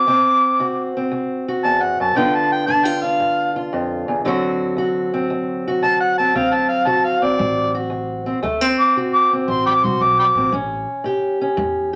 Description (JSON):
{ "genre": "acoustic country blues, solo or duo", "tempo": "115 BPM", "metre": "4/4", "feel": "swing 68% on 8ths", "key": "D mixolydian", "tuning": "A4 = 438 Hz", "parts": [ { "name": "overdriven harmonica", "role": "melody", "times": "0.0-10.5 s", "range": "D5 to D6", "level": "-19 LUFS", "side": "equal", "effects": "none" }, { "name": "fingerpicked steel-string acoustic guitar", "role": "accompaniment", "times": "0.0-12.0 s", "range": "D2 to G4", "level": "-22 LUFS", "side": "equal", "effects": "none" }, { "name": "upright bass", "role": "bass", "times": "6.4-12.0 s", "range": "A1 to E2", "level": "-30 LUFS", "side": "equal", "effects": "none" } ], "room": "moderate club reverb, RT60 0.7 s", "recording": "none", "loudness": "-19 LUFS", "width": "mono", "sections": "0.0-12.0 A section", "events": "harmonica solo 0.0-12.0", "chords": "0.0 D7; 2.2 G7; 4.3 D7; 10.5 A7", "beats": "| 0.08 0.60 1.12 1.64 | 2.17 2.69 3.21 3.73 | 4.25 4.78 5.30 5.82 | 6.34 6.87 7.39 7.91 | 8.44 8.96 9.48 10.01 | 10.53 11.05 11.58" }